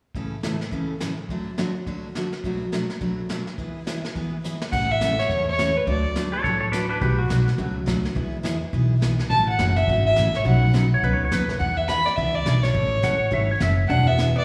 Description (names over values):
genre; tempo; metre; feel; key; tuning
country, western swing; 210 BPM; 4/4; swing 62% on 8ths; A major; A4 = 440 Hz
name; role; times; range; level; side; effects
vintage brush drum kit; drums; 0.1-14.4 s; brushed snare drum, crash cymbal, hi-hat, kick drum, snare drum; -35 LUFS; equal; slapback echo
picked steel-string acoustic guitar; accompaniment; 0.2-14.3 s; A2 to B4; -30 LUFS; equal; slapback echo
dark fiddle; melody; 4.7-6.4, 9.3-14.4 s; B4 to B5; -25 LUFS; equal; slapback echo
upright bass; bass; 4.7-14.4 s; E1 to E2; -25 LUFS; equal; none
clean lap steel guitar; second line; 6.3-7.7, 10.9-13.8 s; D4 to F#5; -28 LUFS; equal; slapback echo
archtop guitar, miked and amplified; second line; 13.9-14.4 s; B3 to D4; -31 LUFS; equal; slapback echo
room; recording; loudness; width
light reverb, studio reverb; live gig heard through the venue's PA, recital hall reverb; -23 LUFS; mono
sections
0.2-4.7 A section; 4.7-14.4 B section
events
drum fill 4.4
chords
0.2 A; 1.3 D; 2.4 Bm7; 3.6 E; 4.7 A; 5.9 D; 7.0 Bm7; 8.2 E; 9.3 A6; 10.5 Badd9; 11.6 E7; 12.7 A; 13.9 E7